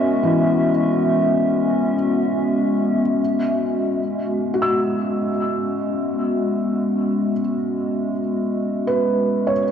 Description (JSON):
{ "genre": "ambient", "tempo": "free time", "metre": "none", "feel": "none", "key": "unclear", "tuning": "A4 = 440 Hz", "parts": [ { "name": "warbly tape-like pad", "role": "sustained chords", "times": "0.0-9.7 s", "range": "G#3 to E5", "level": "-19 LUFS", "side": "left 1 dB", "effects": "chorus, built-in reverb" }, { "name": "felt-muted upright piano", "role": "arpeggios", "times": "0.0-9.7 s", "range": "E3 to E6", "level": "-24 LUFS", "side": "right 1 dB", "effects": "diffuse ambient delay" } ], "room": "wet cathedral reverb, RT60 5.1 s", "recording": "worn, warbling old tape, cassette tape, warbly pitch drift", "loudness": "-18 LUFS", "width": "side -8 dB against mid", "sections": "0.0-3.2 A section; 3.2-9.7 B section", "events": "none", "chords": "0.0 E6; 3.2 F#9sus4", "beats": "free time" }